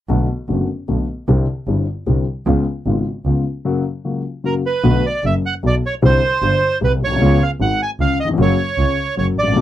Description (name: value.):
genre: tango.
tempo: 152 BPM.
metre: 3/4.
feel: rubato.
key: unclear.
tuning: A4 = 440 Hz.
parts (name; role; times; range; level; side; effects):
warm baby grand piano; accompaniment; 0.1-9.6 s; F#1 to F#4; -19 LUFS; left 4 dB; none.
clear double bass; bass; 0.1-9.6 s; F#1 to C#2; -19 LUFS; right 2 dB; none.
bandoneon; melody; 4.5-9.6 s; A#4 to G#5; -18 LUFS; right 3 dB; none.
room: little or no reverb.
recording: dry, close 1970s-style studio recording.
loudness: -15 LUFS.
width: side -12 dB against mid.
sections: 0.1-4.8 A section; 4.8-9.6 B section.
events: break 3.6-4.8.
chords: 0.1 Bm7; 1.3 Cadd9; 2.5 C#7; 3.6 F#; 4.8 Bm7; 6.0 Cadd9; 7.2 C#7; 8.4 F#.